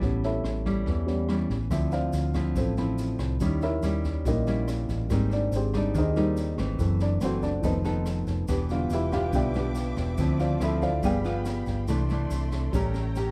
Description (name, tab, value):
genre	bossa nova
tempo	142 BPM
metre	4/4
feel	straight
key	unclear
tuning	A4 = 440 Hz
part	dark baby grand piano	accompaniment	0.0-13.3 s	D3 to G5	-33 LUFS	equal	none
part	nylon-string guitar	accompaniment	0.0-13.3 s	F#2 to Bb4	-32 LUFS	equal	none
part	hollow-body short-scale fingered electric bass	bass	0.0-13.3 s	E1 to E2	-31 LUFS	equal	none
part	open jazz drum kit	drums	0.0-13.2 s	kick drum, rim click, snare drum	-37 LUFS	equal	none
part	tube shaker	percussion	1.7-13.3 s	none	-54 LUFS	equal	none
part	warm studio violin section	sustained chords	8.5-13.3 s	A3 to D6	-43 LUFS	equal	none
room	light reverb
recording	dark, warm production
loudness	-27 LUFS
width	mono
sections	0.0-13.3 A section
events	grand piano solo 0.0-13.3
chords	0.0 A7; 1.7 Dm9; 3.4 Eb7b9; 5.1 Abmaj7; 6.8 F#m7b5; 7.6 F7#11; 8.5 Em7; 10.2 Dm9; 11.0 G7b9; 11.9 C69; 12.7 A7b9